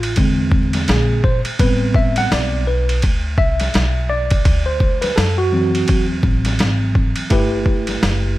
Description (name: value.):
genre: hip hop, jazz-hop.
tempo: 84 BPM.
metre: 4/4.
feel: swing 60% on 16ths.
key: G major.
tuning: A4 = 440 Hz.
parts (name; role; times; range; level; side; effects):
tine electric piano; accompaniment; 0.0-8.4 s; D3 to F#5; -20 LUFS; equal; overdrive, fast stereo tremolo.
upright bass; bass; 0.0-8.4 s; F#1 to F#2; -20 LUFS; equal; none.
dusty soul sampler-style drum kit; drums; 0.0-8.2 s; hi-hat, kick drum, ride cymbal, snare drum; -18 LUFS; equal; overdrive.
room: digital ambience.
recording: vinyl crackle.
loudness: -14 LUFS.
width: side -16 dB against mid.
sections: 0.0-7.3 A section; 7.3-8.4 B section.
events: tine electric piano solo 0.0-7.3.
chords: 0.2 Eaug7; 1.6 Am9; 4.5 D7; 7.3 G69.